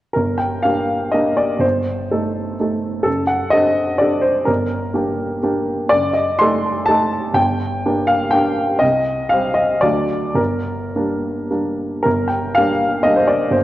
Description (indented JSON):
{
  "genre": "classical, romantic character piece for solo piano",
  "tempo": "104-131 BPM",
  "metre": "3/4",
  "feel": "rubato",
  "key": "G minor",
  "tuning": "A4 = 440 Hz",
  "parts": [
    { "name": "warm upright piano", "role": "solo", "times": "0.1-13.6 s", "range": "F#1 to C6", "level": "-16 LUFS", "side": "equal", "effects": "none" }
  ],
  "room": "moderate scoring stage reverb, RT60 2.0 s",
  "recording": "worn, warbling old tape, cassette tape, warbly pitch drift",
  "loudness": "-16 LUFS",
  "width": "side -15 dB against mid",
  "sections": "0.2-12.1 A section; 12.1-13.6 A section",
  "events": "none",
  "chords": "0.2 Gm; 1.6 Am7b5/G; 3.1 D7/F#; 4.5 Gm; 5.9 F#dim7; 7.4 Gm; 8.8 Cm; 9.8 D; 10.4 Gm"
}